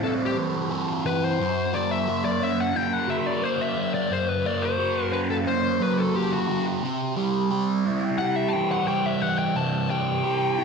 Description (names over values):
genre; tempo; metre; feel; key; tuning
rock; 88 BPM; 4/4; straight; unclear; A4 = 440 Hz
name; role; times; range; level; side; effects
fuzz lead guitar; melody; 0.0-10.6 s; F#4 to A5; -27 LUFS; left 7 dB; distortion, slapback echo
fuzz guitar; riff; 0.0-10.6 s; F#2 to A4; -24 LUFS; right 2 dB; distortion, phaser
room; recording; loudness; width
moderate plate reverb, RT60 3.1 s; none; -22 LUFS; side -5 dB against mid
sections
0.0-10.6 A section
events
lead electric guitar solo 0.0-10.6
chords
0.0 Am; 1.4 F#; 6.8 C